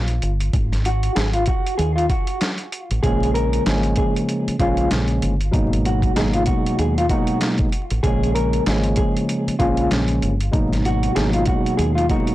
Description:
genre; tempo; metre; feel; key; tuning
hip hop, boom-bap hip-hop; 96 BPM; 4/4; swing 59% on 16ths; unclear; A4 = 440 Hz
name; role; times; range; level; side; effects
deep dub fingered electric bass; bass; 0.0-12.1 s; G1 to Eb2; -21 LUFS; equal; tube saturation
boom bap sampler-style drum kit; drums; 0.1-12.3 s; handclaps, hi-hat, kick drum, snare drum; -23 LUFS; equal; none
mellow electric guitar; melody; 0.9-12.3 s; F4 to Bb4; -24 LUFS; equal; tremolo, high-pass filter, low-pass filter, plate reverb, tape echo
tine electric piano; accompaniment; 3.0-12.3 s; Cb3 to Eb4; -21 LUFS; equal; medium stereo tremolo, cassette tape, high-pass filter, low-pass filter
room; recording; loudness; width
light reverb; blown-out, overdriven recording, vinyl crackle, overdrive; -17 LUFS; side -15 dB against mid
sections
0.0-12.3 A section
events
break 0.0-3.0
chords
0.0 Gm; 0.5 Ab5; 3.0 Bbm7; 5.5 Abm7; 8.0 Bbm7; 10.5 Abm7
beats
| 0.54 1.16 1.78 2.41 | 3.04 3.66 4.29 4.91 | 5.54 6.16 6.79 7.41 | 8.04 8.66 9.29 9.91 | 10.54 11.16 11.79

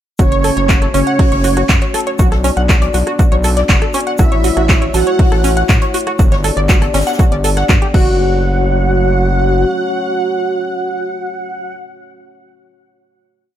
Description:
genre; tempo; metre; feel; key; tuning
melodic techno; 120 BPM; 4/4; straight; F# phrygian; A4 = 438 Hz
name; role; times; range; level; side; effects
soft octave-layered synth lead; melody; 0.2-11.7 s; C#4 to F#4; -19 LUFS; equal; chorus, phaser, sidechain pumping, ping-pong delay
soft supersaw; second line; 0.2-11.7 s; C#5 to F#5; -21 LUFS; right 3 dB; sidechain pumping, ping-pong delay
dark analog pad; sustained chords; 0.2-11.7 s; A3 to D5; -22 LUFS; left 3 dB; chorus, sidechain pumping
tight sequenced synth; arpeggios; 0.2-8.4 s; C#4 to F#5; -20 LUFS; equal; chorus, sidechain pumping, ping-pong delay
gritty driven synth bass; bass; 0.2-9.7 s; F#1 to A2; -16 LUFS; equal; sidechain pumping
electronic kick drum; drums; 0.2-8.0 s; none; -12 LUFS; equal; small room ambience
house drum kit; drums; 0.2-8.0 s; crash cymbal, handclaps, hi-hat, rim click; -20 LUFS; right 1 dB; sidechain pumping on hats, small room ambience, sidechain pumping on cymbals
natural country drum kit; drums; 0.2-7.8 s; hi-hat, shaker, snare drum; -31 LUFS; left 2 dB; high-pass filter on hats, small room ambience, high-pass filter on snare, high-pass filter on perc, high-pass filter on room
room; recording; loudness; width
light reverb; none; -11 LUFS; side -11 dB against mid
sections
0.2-8.2 drop; 8.2-12.2 final hit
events
drop 0.2-8.2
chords
0.2 F#m; 2.2 Bm; 4.2 A6; 6.2 G; 7.9 F#m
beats
| 0.19 0.69 1.19 1.69 | 2.19 2.69 3.19 3.69 | 4.19 4.69 5.19 5.69 | 6.19 6.69 7.19 7.69 | 8.19 8.69 9.19 9.69 | 10.19 10.69 11.19 11.69

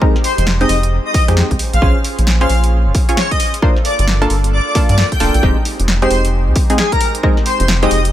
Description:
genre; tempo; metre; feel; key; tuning
UK garage, two-step garage; 133 BPM; 4/4; swing 63% on 16ths; F minor; A4 = 438 Hz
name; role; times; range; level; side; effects
warm analog pad; sustained chords; 0.0-8.1 s; Ab3 to C5; -28 LUFS; right 1 dB; chorus, tremolo, sidechain pumping
punchy chord stab; stabs; 0.0-8.0 s; Ab3 to Db5; -19 LUFS; equal; chorus, cassette tape, dub echo
electronic kick drum; drums; 0.0-7.3 s; none; -15 LUFS; equal; overdrive
airy dreamy lead; melody; 0.2-8.0 s; Ab4 to G5; -20 LUFS; left 2 dB; chorus, dub echo
punchy analog drum machine; drums; 0.2-8.1 s; hi-hat, snare drum; -20 LUFS; equal; none
rubbery square bass; bass; 0.4-8.1 s; D1 to G2; -14 LUFS; equal; none
room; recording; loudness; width
little or no reverb; none; -12 LUFS; side -12 dB against mid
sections
0.0-8.1 A section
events
none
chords
0.0 Fm7; 1.6 Bbm7; 3.6 Gm7; 5.4 Fm7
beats
| 0.01 0.47 0.92 1.37 | 1.82 2.27 2.72 3.17 | 3.62 4.08 4.53 4.98 | 5.43 5.88 6.33 6.78 | 7.23 7.68

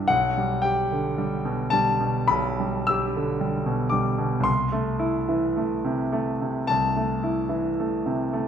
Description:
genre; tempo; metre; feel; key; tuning
classical, romantic nocturne for solo piano; 55 BPM; 4/4; rubato; G major; A4 = 440 Hz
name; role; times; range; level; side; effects
bright concert grand piano; solo; 0.0-8.5 s; B1 to E6; -22 LUFS; equal; none
room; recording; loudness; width
wet recital hall reverb, RT60 1.6 s; none; -22 LUFS; side -8 dB against mid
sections
0.0-8.5 A section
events
none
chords
0.1 G/B; 4.5 Am/C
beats
| 0.11 1.18 2.29 3.42 | 4.48 5.57 6.68 7.79

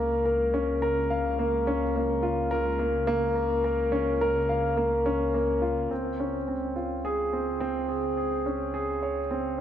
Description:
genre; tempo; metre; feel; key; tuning
piano and strings electronica; 106 BPM; 4/4; straight; Db major; A4 = 440 Hz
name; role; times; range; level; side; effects
warm concert grand piano; riff; 0.0-9.6 s; Bb3 to F5; -25 LUFS; equal; ping-pong delay
dark detuned saw bass; bass; 0.0-9.6 s; Db2; -33 LUFS; equal; none
room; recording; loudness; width
moderate lush hall reverb, RT60 2.4 s; none; -25 LUFS; side -10 dB against mid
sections
0.0-5.9 A section; 5.9-9.6 B section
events
none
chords
0.0 Bbm/Db; 5.9 Dbmaj7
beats
0.25 0.81 | 1.38 1.95 2.51 3.08 | 3.65 4.21 4.78 5.34 | 5.91 6.47 7.04 7.61 | 8.17 8.74 9.30

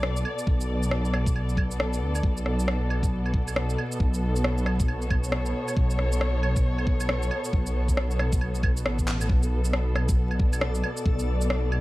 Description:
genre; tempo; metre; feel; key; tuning
future garage; 136 BPM; 4/4; swing 61% on 16ths; B minor; A4 = 439 Hz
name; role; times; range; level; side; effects
muted studio string section; sustained chords; 0.0-11.8 s; B2 to D5; -31 LUFS; equal; sidechain pumping
dark detuned saw bass; bass; 0.0-11.8 s; A1 to D2; -26 LUFS; equal; sidechain pumping
electronic rim click, shaker, claves and handclaps; drums; 0.0-11.8 s; none; -31 LUFS; equal; studio reverb
electronic kick drum; drums; 0.5-11.2 s; none; -24 LUFS; equal; studio reverb
backwards swelling texture; texture; 10.2-11.8 s; A3 to A4; -37 LUFS; left 6 dB; built-in reverb
room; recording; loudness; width
little or no reverb; vinyl crackle; -23 LUFS; side -18 dB against mid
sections
0.0-9.3 A section; 9.3-11.8 B section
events
drum fill 9.1; band accent 9.1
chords
0.0 Bm7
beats
0.03 | 0.47 0.92 1.36 1.80 | 2.24 2.68 3.12 3.56 | 4.00 4.44 4.88 5.33 | 5.77 6.21 6.65 7.09 | 7.53 7.97 8.41 8.86 | 9.30 9.74 10.18 10.62 | 11.06 11.50

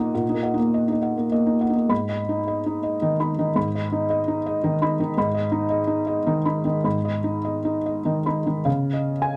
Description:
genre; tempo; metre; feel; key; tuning
neoclassical minimalist piano; 98-114 BPM; 3/4; rubato; G# dorian; A4 = 440 Hz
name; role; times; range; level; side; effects
felt-muted upright piano; solo; 0.0-9.4 s; G#2 to B5; -23 LUFS; equal; none
room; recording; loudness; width
light reverb; dry, close 1970s-style studio recording; -23 LUFS; mono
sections
0.0-1.9 A section; 1.9-8.7 B section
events
none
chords
0.0 D#m/A#; 1.9 G#m; 8.7 C#add9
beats
| 0.12 0.72 1.31 | 1.91 2.47 3.02 | 3.56 4.10 4.63 | 5.16 5.69 6.26 | 6.85 7.46 8.06 | 8.66 9.22

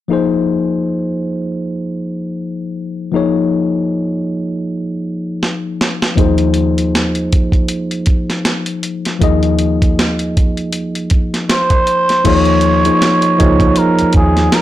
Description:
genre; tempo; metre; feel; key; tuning
R&B, neo-soul; 79 BPM; 4/4; swing 57% on 16ths; unclear; A4 = 440 Hz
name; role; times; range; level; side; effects
tine electric piano; accompaniment; 0.1-14.6 s; F3 to Eb5; -16 LUFS; moving between left 5 dB and right 2 dB; auto-pan
boom bap sampler-style drum kit; drums; 5.4-14.6 s; crash cymbal, hi-hat, kick drum, snare drum; -15 LUFS; right 1 dB; none
vintage muted fingered electric bass; bass; 6.2-14.5 s; Db2 to Eb2; -18 LUFS; right 1 dB; transformer saturation
trumpet with cup mute; melody; 11.5-14.6 s; Ab4 to Db5; -14 LUFS; right 2 dB; slapback echo
room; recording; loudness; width
moderate studio reverb, RT60 0.8 s; blown-out, overdriven recording, overdrive; -13 LUFS; side -13 dB against mid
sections
0.1-12.3 A section; 12.3-14.6 B section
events
drum fill 5.4-6.2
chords
0.1 Eb9sus4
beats
| 0.10 0.86 1.62 2.38 | 3.14 3.90 4.66 5.42 | 6.17 6.93 7.69 8.45 | 9.21 9.97 10.73 11.49 | 12.25 13.01 13.77 14.53

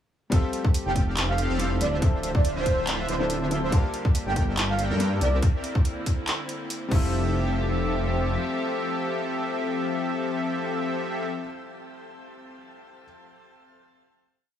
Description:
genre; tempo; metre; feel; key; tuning
future bass; 141 BPM; 4/4; swing 53% on 16ths, half-time; F major; A4 = 440 Hz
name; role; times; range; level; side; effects
felt-muted upright piano; accompaniment; 0.3-13.1 s; F3 to A5; -34 LUFS; left 3 dB; sidechain pumping, tape echo
rich chamber string section; sustained chords; 0.3-11.3 s; D3 to E5; -38 LUFS; equal; sidechain pumping
soft supersaw; riff; 0.3-11.3 s; D3 to G5; -30 LUFS; left 1 dB; vintage 12-bit sampler grit, sidechain pumping, tape echo
wide detuned saw bass; bass; 0.3-8.4 s; D1 to G2; -27 LUFS; equal; chorus, sidechain pumping
electronic kick drum; drums; 0.3-7.0 s; none; -22 LUFS; equal; none
trap drum kit; drums; 0.3-7.0 s; crash cymbal, handclaps, hi-hat; -31 LUFS; equal; none
breathy flute-like synth lead; melody; 0.9-5.4 s; C5 to G5; -32 LUFS; right 2 dB; analog chorus, sidechain pumping, tape echo
room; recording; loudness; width
little or no reverb; none; -23 LUFS; side -10 dB against mid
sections
0.3-7.1 drop; 7.1-10.5 final hit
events
drop 0.3-7.1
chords
0.3 Fmaj9; 2.0 Dm9; 3.7 Gm9; 5.4 C9; 6.9 Fmaj9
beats
| 0.32 0.74 1.17 1.60 | 2.02 2.45 2.87 3.30 | 3.72 4.15 4.57 5.00 | 5.42 5.85 6.28 6.70 | 7.13 7.55 7.98 8.40 | 8.83 9.26 9.68 10.11

